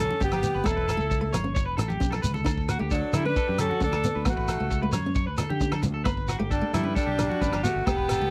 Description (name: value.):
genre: highlife guitar band.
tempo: 133 BPM.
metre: 4/4.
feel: straight.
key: unclear.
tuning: A4 = 441 Hz.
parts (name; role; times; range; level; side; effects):
clear alto saxophone; melody; 0.0-8.3 s; D4 to B4; -30 LUFS; equal; none.
edgy tenor saxophone; second line; 0.0-8.3 s; F#3 to E4; -40 LUFS; equal; none.
fingerpicked steel-string acoustic guitar; accompaniment; 0.0-8.3 s; A3 to D4; -35 LUFS; equal; none.
fingered electric bass; bass; 0.0-8.3 s; E1 to D3; -32 LUFS; equal; none.
electric guitar at the edge of break-up; arpeggios; 0.1-8.3 s; F#4 to C#5; -36 LUFS; equal; lush chorus, slapback echo.
congas; percussion; 0.1-7.7 s; none; -36 LUFS; equal; none.
vintage drum kit; drums; 0.2-8.2 s; hi-hat, kick drum, rim click; -32 LUFS; equal; none.
shekere; percussion; 0.2-8.2 s; none; -35 LUFS; equal; none.
agogo bells; percussion; 0.3-8.2 s; none; -43 LUFS; equal; none.
room: little or no reverb.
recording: dry, close 1970s-style studio recording.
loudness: -26 LUFS.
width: mono.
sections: 0.0-8.3 A section.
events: drum fill 2.1-2.5.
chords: 0.0 G; 0.7 Em; 2.5 D; 6.1 G.